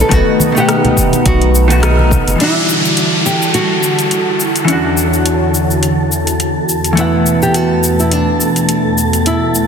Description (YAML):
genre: sunset chillout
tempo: 105 BPM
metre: 4/4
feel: swing 56% on 16ths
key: E dorian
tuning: A4 = 440 Hz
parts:
  - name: nylon-string guitar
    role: melody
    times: 0.0-9.7 s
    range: D4 to A4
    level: -18 LUFS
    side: right 1 dB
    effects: tape echo
  - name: lush unison pad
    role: sustained chords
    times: 0.0-9.7 s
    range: E2 to F#5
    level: -17 LUFS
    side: equal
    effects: chorus, phaser
  - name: round analog bass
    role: bass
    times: 0.0-2.4 s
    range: F#1 to B1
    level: -12 LUFS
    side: equal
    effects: none
  - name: deep house drum kit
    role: drums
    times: 0.0-9.7 s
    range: hi-hat, rim click, shaker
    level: -19 LUFS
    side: left 2 dB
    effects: overdrive
  - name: vintage hollow-body jazz guitar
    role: accompaniment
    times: 0.1-9.7 s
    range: D#3 to F#5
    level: -16 LUFS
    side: equal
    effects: auto-pan, ping-pong delay
  - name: electronic kick drum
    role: drums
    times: 0.1-2.2 s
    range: none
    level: -16 LUFS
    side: equal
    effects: overdrive
  - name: congas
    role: percussion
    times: 0.4-2.2 s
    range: none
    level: -20 LUFS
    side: right 3 dB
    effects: none
  - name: downlifter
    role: sound effects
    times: 2.4-7.0 s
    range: none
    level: -19 LUFS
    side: equal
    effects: none
  - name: wind-like tuned noise texture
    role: texture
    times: 2.8-9.7 s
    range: A4 to A5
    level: -22 LUFS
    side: right 1 dB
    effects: built-in reverb
room: moderate lush hall reverb, RT60 2.5 s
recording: dense, heavily limited modern master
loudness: -10 LUFS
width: side -7 dB against mid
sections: 0.0-2.4 A section; 2.4-9.7 B section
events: band accent 1.8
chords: 0.0 B7; 2.4 Em9; 4.7 Dmaj9/E; 7.0 B7sus4/E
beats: | 0.11 0.68 1.26 1.83 | 2.40 2.97 3.54 4.11 | 4.68 5.26 5.83 6.40 | 6.97 7.54 8.11 8.68 | 9.26